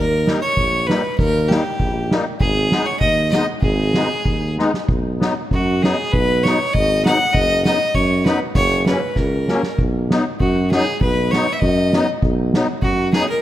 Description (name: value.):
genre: alpine folk, alpine dance band.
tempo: 98 BPM.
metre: 2/4.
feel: rubato.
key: G# harmonic minor, B major from 4.9 s.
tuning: A4 = 439 Hz.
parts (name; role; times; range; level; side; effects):
bright fiddle; melody; 0.0-13.4 s; F#4 to F#5; -20 LUFS; equal; none.
warm tuba; bass; 0.0-13.2 s; F#1 to F#2; -21 LUFS; equal; none.
musette accordion; accompaniment; 0.3-13.3 s; F#3 to D#4; -24 LUFS; left 2 dB; none.
soft-mallet drum kit; drums; 0.3-13.3 s; kick drum, snare drum; -21 LUFS; equal; none.
room: light reverb.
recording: none.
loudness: -15 LUFS.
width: side -13 dB against mid.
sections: 0.0-4.9 A section; 4.9-13.4 B section.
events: drum fill 4.6-4.9, 9.2-9.8.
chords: 0.0 D#; 2.4 G#m; 4.9 B6; 7.3 B/F#; 8.5 F#; 9.8 B.